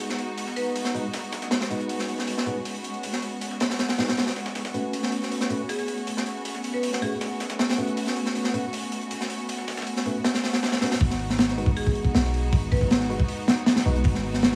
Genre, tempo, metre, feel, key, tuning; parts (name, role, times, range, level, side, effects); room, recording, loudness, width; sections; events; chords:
drum and bass, jungle; 158 BPM; 4/4; straight; G# phrygian; A4 = 439 Hz
clear symphonic string section; sustained chords; 0.0-14.6 s; G#3 to F#4; -33 LUFS; equal; low-pass filter
dusty soul sampler-style drum kit; drums; 0.0-10.9 s; hi-hat, snare drum; -41 LUFS; equal
crunchy breakbeat drum kit; drums; 0.1-14.6 s; hi-hat, kick drum, snare drum; -28 LUFS; equal; high-pass filter on kick, high-pass filter on hats, high-pass filter on snare, high-pass filter on room
marimba with hard mallets; melody; 0.6-0.8, 5.7-7.6, 11.8-13.0 s; G#4 to B4; -37 LUFS; equal; dub echo
tine electric piano; stabs; 0.9-14.6 s; G#3 to B4; -34 LUFS; equal; overdrive, vintage 12-bit sampler grit, dub echo
warm 808-style bass; bass; 11.0-14.6 s; G#1 to B1; -30 LUFS; equal; tube saturation
light reverb, small room ambience; -26 LUFS; mono
0.0-11.0 A section; 11.0-14.6 B section
drop 11.0-14.6
0.0 G#m7; 4.9 A69; 11.0 G#m7